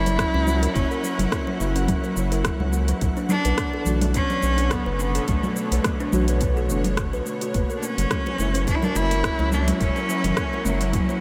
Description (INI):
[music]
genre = organic downtempo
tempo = 106 BPM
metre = 4/4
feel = swing 55% on 16ths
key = B minor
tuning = A4 = 437 Hz
[part]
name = rich cello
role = melody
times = 0.0-11.2 s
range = F#3 to E4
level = -29 LUFS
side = equal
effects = diffuse ambient delay, shimmer reverb
[part]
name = deep mellow chord stab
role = accompaniment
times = 0.0-11.2 s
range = D3 to F#4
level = -37 LUFS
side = equal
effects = none
[part]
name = bowed-like drone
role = sustained chords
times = 0.0-11.2 s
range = B2 to F#5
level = -34 LUFS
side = equal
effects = built-in reverb, sidechain pumping, shimmer reverb
[part]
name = kalimba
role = arpeggios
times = 0.0-11.2 s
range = F#3 to B4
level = -31 LUFS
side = equal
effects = analog delay, shimmer reverb
[part]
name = round analog bass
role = bass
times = 0.0-11.0 s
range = F#1 to C#2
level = -26 LUFS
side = equal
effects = sidechain pumping
[part]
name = twinkling granular texture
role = texture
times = 0.6-11.2 s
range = E4 to F#5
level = -43 LUFS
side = equal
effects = none
[part]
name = deep house drum kit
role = drums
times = 0.1-11.2 s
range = cabasa, congas, hi-hat, rim click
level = -32 LUFS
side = equal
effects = none
[part]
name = electronic kick drum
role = drums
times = 0.2-11.1 s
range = none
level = -29 LUFS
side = equal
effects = none
[part]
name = congas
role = percussion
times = 8.3-10.8 s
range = none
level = -37 LUFS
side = equal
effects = none
[sound]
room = moderate huge ambient reverb, RT60 8.1 s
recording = dreamy mix soaked in reverb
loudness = -23 LUFS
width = mono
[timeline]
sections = 0.0-11.2 A section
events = none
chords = 0.0 F#7; 3.0 Bm7; 7.5 F#7